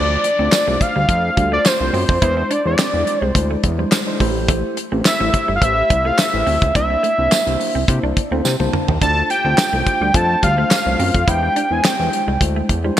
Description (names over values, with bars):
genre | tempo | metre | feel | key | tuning
early-eighties boogie funk | 106 BPM | 4/4 | straight | D minor | A4 = 440 Hz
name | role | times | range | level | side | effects
fat analog lead | melody | 0.0-12.4 s | C5 to A5 | -18 LUFS | equal | none
mellow tine electric piano | accompaniment | 0.0-13.0 s | G#3 to A5 | -24 LUFS | left 3 dB | wide subtle chorus
semi-hollow electric guitar | riff | 0.0-12.9 s | G3 to E4 | -27 LUFS | right 3 dB | wide subtle chorus
fat analog bass | bass | 0.0-12.9 s | G1 to C3 | -20 LUFS | equal | none
damped 70s drum kit | drums | 0.2-13.0 s | handclaps, hi-hat, kick drum, snare drum, toms | -18 LUFS | equal | gated reverb
tambourine | percussion | 0.5-13.0 s | none | -27 LUFS | right 9 dB | none
room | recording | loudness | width
moderate lush hall reverb, RT60 2.1 s | bright 1980s-style digital production | -14 LUFS | side -11 dB against mid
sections
0.0-13.0 A section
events
tine electric piano fill 7.9-9.0; drum fill 8.4-9.0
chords
0.0 Dm7; 2.2 E7b13; 4.2 Am7; 6.8 C9; 9.0 Dm7; 11.3 E7alt